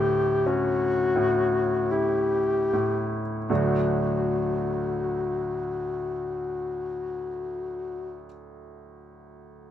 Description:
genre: classical, romantic duo for alto saxophone and grand piano.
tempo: 36-46 BPM.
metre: 3/4.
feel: rubato.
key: D major.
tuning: A4 = 435 Hz.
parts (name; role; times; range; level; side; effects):
mellow alto saxophone; melody; 0.0-8.2 s; F#4 to G4; -26 LUFS; left 3 dB; none.
bright concert grand piano; accompaniment; 0.0-9.7 s; D2 to F#4; -28 LUFS; right 1 dB; none.
room: light reverb.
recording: none.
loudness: -24 LUFS.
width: side -10 dB against mid.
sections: 0.0-3.5 A section; 3.5-7.8 B section.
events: slowing down 0.0-3.5.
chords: 0.0 A7/D; 3.5 D.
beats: 0.47 1.91 | 3.49 4.92 6.34.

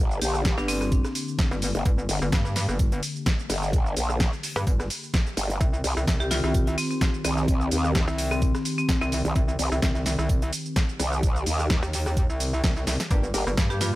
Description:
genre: bass house.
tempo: 128 BPM.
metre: 4/4.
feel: swing 55% on 16ths.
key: G minor.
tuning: A4 = 440 Hz.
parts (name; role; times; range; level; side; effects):
sweeping resonant pad; sustained chords; 0.0-14.0 s; D3 to G4; -34 LUFS; equal; chorus, sidechain pumping.
growl bass; bass; 0.0-13.4 s; G1 to Eb2; -25 LUFS; equal; chorus, overdrive, sidechain pumping.
house drum kit; drums; 0.1-13.9 s; hi-hat, rim click, shaker, snare drum; -30 LUFS; equal; none.
marimba with hard mallets; melody; 0.2-0.9, 6.2-9.4, 13.7-14.0 s; C4 to G4; -31 LUFS; left 2 dB; digital delay.
breakbeat sampler-style drum kit; drums; 0.2-13.9 s; hi-hat, snare drum, tambourine; -38 LUFS; right 1 dB; high-pass filter on perc, high-pass filter on snare, high-pass filter on hats.
electronic kick drum; drums; 0.4-13.7 s; none; -24 LUFS; equal; none.
metallic wobble bass; bass; 0.6-13.9 s; G1 to G2; -27 LUFS; equal; chorus, tube saturation, sidechain pumping.
band-passed chord stab; stabs; 13.1-13.5 s; G3 to Bb4; -33 LUFS; left 1 dB; chorus, sidechain pumping, digital delay.
room: little or no reverb.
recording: none.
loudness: -22 LUFS.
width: side -17 dB against mid.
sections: 0.0-14.0 A section.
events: drum fill 12.9.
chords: 0.0 Gm; 5.6 Cm; 13.1 Gm.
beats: 0.45 0.92 1.39 | 1.86 2.32 2.79 3.26 | 3.73 4.20 4.67 5.14 | 5.61 6.07 6.54 7.01 | 7.48 7.95 8.42 8.89 | 9.36 9.82 10.29 10.76 | 11.23 11.70 12.17 12.64 | 13.11 13.57.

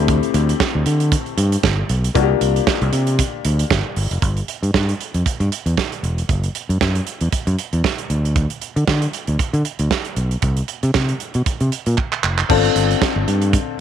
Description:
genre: early-eighties boogie funk.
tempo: 116 BPM.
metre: 4/4.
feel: swing 56% on 16ths.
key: E minor.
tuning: A4 = 444 Hz.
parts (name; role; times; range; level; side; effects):
clear baby grand piano; accompaniment; 0.0-4.2, 12.5-13.8 s; A3 to A4; -21 LUFS; left 15 dB; none.
overdriven fingered electric bass; bass; 0.0-13.6 s; E1 to D3; -18 LUFS; equal; none.
modern studio drum kit; drums; 0.1-13.7 s; crash cymbal, handclaps, hi-hat, kick drum, snare drum; -21 LUFS; right 5 dB; none.
room: little or no reverb.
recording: 1960s-style stereo.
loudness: -16 LUFS.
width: side -9 dB against mid.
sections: 0.0-4.2 A section; 4.2-12.5 B section; 12.5-13.8 A section.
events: drum fill 12.0-12.5.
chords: 0.0 D9sus4; 2.2 C9sus4; 4.2 Em; 6.3 N.C.; 10.4 Csus4; 12.5 G9sus4.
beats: | 0.08 0.60 1.12 1.64 | 2.15 2.67 3.19 3.70 | 4.22 4.74 5.26 5.77 | 6.29 6.81 7.33 7.84 | 8.36 8.88 9.39 9.91 | 10.43 10.95 11.46 11.98 | 12.50 13.02 13.53.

